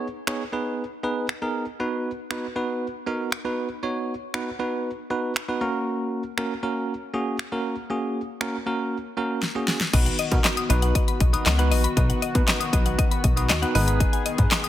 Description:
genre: dance-pop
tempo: 118 BPM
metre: 4/4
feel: straight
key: B major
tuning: A4 = 439 Hz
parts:
  - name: bell-like tine electric piano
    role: accompaniment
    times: 0.0-14.6 s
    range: A#3 to C#5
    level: -27 LUFS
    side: right 2 dB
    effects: fast stereo tremolo, sidechain pumping
  - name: pop drum kit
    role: drums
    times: 0.3-14.7 s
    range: crash cymbal, finger snaps, handclaps, hi-hat, kick drum, snare drum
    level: -23 LUFS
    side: equal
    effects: soft clipping on snare
  - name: chorused pulse-width pad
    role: sustained chords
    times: 9.9-14.7 s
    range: D#3 to G#4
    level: -31 LUFS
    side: left 3 dB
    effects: sidechain pumping
  - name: mallet-like synth pluck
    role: arpeggios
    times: 9.9-14.7 s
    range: D#5 to D#6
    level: -30 LUFS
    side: left 8 dB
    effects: chorus, sidechain pumping, tape echo
  - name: plucky analog bass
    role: bass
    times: 9.9-14.5 s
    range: G#1 to B2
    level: -22 LUFS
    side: equal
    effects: sidechain pumping
room: light reverb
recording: dense, heavily limited modern master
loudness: -22 LUFS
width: side -13 dB against mid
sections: 0.0-9.9 A section; 9.9-14.7 B section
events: drum fill 9.4-9.9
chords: 0.0 G#m; 1.8 B; 5.6 F#; 9.9 B; 13.7 G#m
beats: 0.27 0.78 1.29 | 1.80 2.31 2.82 3.33 | 3.83 4.34 4.85 5.36 | 5.87 6.38 6.88 7.39 | 7.90 8.41 8.92 9.43 | 9.94 10.44 10.95 11.46 | 11.97 12.48 12.99 13.49 | 14.00 14.51

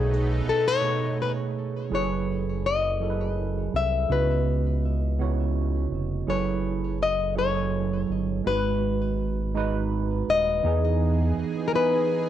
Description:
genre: R&B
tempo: 55 BPM (dotted quarters)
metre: 6/8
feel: straight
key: unclear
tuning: A4 = 440 Hz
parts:
  - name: flamenco guitar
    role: melody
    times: 0.0-12.3 s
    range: G#4 to E5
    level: -26 LUFS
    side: left 5 dB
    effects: cassette tape
  - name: tine electric piano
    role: accompaniment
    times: 0.0-12.3 s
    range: B2 to D#5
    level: -28 LUFS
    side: right 7 dB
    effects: overdrive, lush chorus, cassette tape
  - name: lush unison pad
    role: sustained chords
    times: 0.0-1.9, 10.6-12.3 s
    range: E3 to G#4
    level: -36 LUFS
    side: left 1 dB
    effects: chorus, cassette tape
  - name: round analog bass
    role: bass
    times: 0.0-11.4 s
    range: D#1 to E2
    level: -27 LUFS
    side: equal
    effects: none
room: light reverb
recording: home recording on cassette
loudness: -23 LUFS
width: side -11 dB against mid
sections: 0.0-1.9 A section; 1.9-10.6 B section; 10.6-12.3 C section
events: nylon-string guitar solo 0.0-1.9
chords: 0.0 B13; 1.9 F#m11; 4.1 C#m11; 6.3 F#m11; 8.5 G#m7; 10.6 Emaj7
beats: 0.82 | 1.91 3.00 | 4.09 5.18 | 6.27 7.36 | 8.45 9.54 | 10.64 11.73

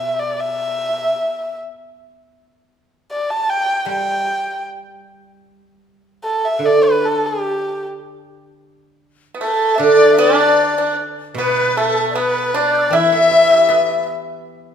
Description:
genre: chinese traditional, Chinese chamber ensemble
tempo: 77 BPM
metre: 4/4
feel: straight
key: unclear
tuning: A4 = 442 Hz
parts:
  - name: warm erhu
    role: melody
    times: 0.0-14.1 s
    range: G4 to A5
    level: -17 LUFS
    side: equal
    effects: none
  - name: guzheng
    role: accompaniment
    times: 0.0-14.7 s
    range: B2 to B4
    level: -18 LUFS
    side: right 2 dB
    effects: none
  - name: pipa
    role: second line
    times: 9.3-14.0 s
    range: A3 to E4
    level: -19 LUFS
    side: right 2 dB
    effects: none
  - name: hollow dizi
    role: second line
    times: 9.4-14.1 s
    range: A4 to G6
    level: -19 LUFS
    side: left 7 dB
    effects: none
room: wet recital hall reverb, RT60 1.8 s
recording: minimal, uncompressed stereo recording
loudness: -14 LUFS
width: side -8 dB against mid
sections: 0.0-8.2 A section; 8.2-14.7 B section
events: none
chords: none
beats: 0.36 1.14 | 1.92 2.70 3.47 4.26 | 5.04 5.82 6.62 7.42 | 8.23 9.02 9.81 10.59 | 11.37 12.15 12.93 13.69 | 14.47

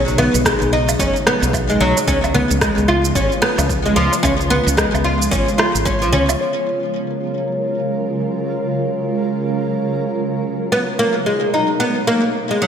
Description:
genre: organic downtempo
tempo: 111 BPM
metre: 4/4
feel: swing 59% on 16ths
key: unclear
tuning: A4 = 438 Hz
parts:
  - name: granular cloud pad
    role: sustained chords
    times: 0.0-12.7 s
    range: B2 to A#4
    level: -22 LUFS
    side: right 2 dB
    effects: built-in reverb, sidechain pumping
  - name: woody fretless electric bass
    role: bass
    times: 0.0-6.3 s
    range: F#1 to C#2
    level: -20 LUFS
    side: equal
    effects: wide subtle chorus, sidechain pumping
  - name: bronze singing bowl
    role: texture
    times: 0.0-12.7 s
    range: G#4 to C#5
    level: -29 LUFS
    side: left 2 dB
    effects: none
  - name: electronic shaker, woodblock and rim click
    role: drums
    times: 0.1-6.4 s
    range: none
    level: -22 LUFS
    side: right 1 dB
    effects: overdrive, low-pass filter on perc, studio reverb, low-pass filter on snare, gated reverb
  - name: darbuka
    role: percussion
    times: 0.1-6.4 s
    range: none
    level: -27 LUFS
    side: left 2 dB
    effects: none
  - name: oud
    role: arpeggios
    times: 0.2-6.3, 10.7-12.7 s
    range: E#3 to E#4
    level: -17 LUFS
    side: equal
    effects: digital delay
  - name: electronic kick drum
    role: drums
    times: 0.5-6.0 s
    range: none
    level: -25 LUFS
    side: equal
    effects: overdrive, studio reverb
room: wet plate reverb, RT60 2.6 s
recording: bright 1980s-style digital production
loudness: -15 LUFS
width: side -8 dB against mid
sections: 0.0-6.4 A section; 6.4-12.7 B section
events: none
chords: 0.0 B69; 2.1 C#7; 6.4 F#maj9; 10.7 G#m9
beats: 0.46 0.99 1.54 | 2.08 2.62 3.16 3.70 | 4.24 4.78 5.32 5.86 | 6.40 6.94 7.48 8.02 | 8.56 9.10 9.64 10.19 | 10.72 11.27 11.81 12.35

